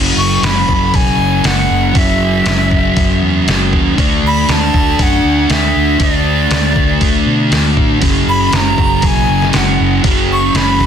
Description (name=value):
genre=rock, shoegaze and dream pop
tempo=118 BPM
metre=4/4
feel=straight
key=unclear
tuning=A4 = 440 Hz
part: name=thick fuzz guitar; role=riff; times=0.0-10.9 s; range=F#2 to D4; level=-14 LUFS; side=equal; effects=distortion, analog chorus
part: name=vintage muted fingered electric bass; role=bass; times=0.0-10.9 s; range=F#1 to B2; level=-17 LUFS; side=equal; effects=none
part: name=breathy bright jazz flute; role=melody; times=0.2-10.9 s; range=D5 to C#6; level=-17 LUFS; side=equal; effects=slapback echo
part: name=detuned 8-bit digital drum machine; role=drums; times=0.4-10.9 s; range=hi-hat, kick drum, snare drum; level=-15 LUFS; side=equal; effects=none
room=digital ambience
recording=dense, heavily limited modern master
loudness=-10 LUFS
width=side -8 dB against mid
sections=0.0-10.9 A section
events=none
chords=0.0 F#7(no3); 4.0 D5; 8.0 F#sus4